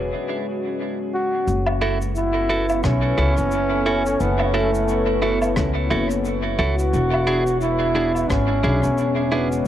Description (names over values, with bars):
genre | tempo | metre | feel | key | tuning
ambient dub | 88 BPM | 4/4 | swing 58% on 16ths | F# minor | A4 = 443 Hz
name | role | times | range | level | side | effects
deep dark ambient pad | sustained chords | 0.0-9.7 s | G#3 to C#5 | -26 LUFS | left 1 dB | chorus, built-in reverb, cassette tape
upright bass | bass | 0.0-9.6 s | E1 to C#2 | -23 LUFS | equal | none
mellow trombone | melody | 1.1-9.7 s | A3 to F#4 | -22 LUFS | equal | vintage 12-bit sampler grit, cassette tape, dub echo
cabasa, woodblock and rim click | drums | 1.5-9.6 s | none | -30 LUFS | equal | low-pass filter on snare, low-pass filter on perc, low-pass filter on room, dub echo
clean electric guitar | stabs | 1.8-9.5 s | D4 to A4 | -26 LUFS | right 3 dB | cassette tape, dub echo
electronic kick drum | drums | 2.8-8.5 s | none | -26 LUFS | equal | none
room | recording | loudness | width
light reverb, small room ambience | home recording on cassette, low-pass filter | -18 LUFS | side -11 dB against mid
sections
0.0-1.5 A section; 1.5-9.7 B section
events
filter sweep 0.0-1.5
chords
0.0 E (rootless); 1.5 F#m7; 6.9 E7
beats
0.11 0.80 | 1.48 2.16 2.84 3.52 | 4.20 4.89 5.57 6.25 | 6.93 7.61 8.29 8.98 | 9.66